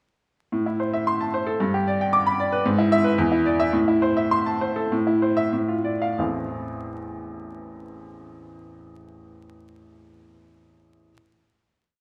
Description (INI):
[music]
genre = classical, virtuoso piano study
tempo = 88-115 BPM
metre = 2/4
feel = rubato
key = A minor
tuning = A4 = 440 Hz
[part]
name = bright baby grand piano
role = solo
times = 0.5-11.1 s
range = A1 to D6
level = -23 LUFS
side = equal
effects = none
[sound]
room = wet recital hall reverb, RT60 1.6 s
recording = dark, warm production, vinyl crackle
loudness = -22 LUFS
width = mono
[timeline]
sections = 0.5-4.9 A section; 4.9-6.2 coda; 6.2-8.9 final chord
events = slowing down 3.2-6.2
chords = 0.5 Am; 1.6 G; 2.6 E/G#; 3.2 Dsus2/E; 3.7 Am; 5.5 Dm/A; 6.2 Am